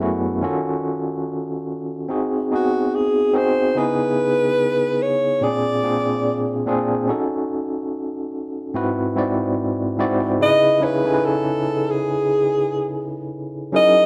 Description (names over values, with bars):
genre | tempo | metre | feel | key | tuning
soul | 72 BPM | 4/4 | swing 58% on 16ths | C# minor | A4 = 439 Hz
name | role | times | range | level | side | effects
overdriven tine electric piano | accompaniment | 0.0-14.1 s | F#2 to G#5 | -23 LUFS | equal | fast tremolo
breathy alto saxophone | melody | 2.5-14.1 s | F#4 to D#5 | -21 LUFS | equal | plate reverb
room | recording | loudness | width
wet studio reverb, RT60 0.6 s | rough home demo mix | -21 LUFS | mono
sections
0.0-10.4 A section; 10.4-14.1 B section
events
none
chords
0.4 D#m7b5; 2.1 G#7; 3.8 C#m9; 5.4 A#7; 7.1 D#m7b5; 8.8 G#7alt; 10.4 C#m9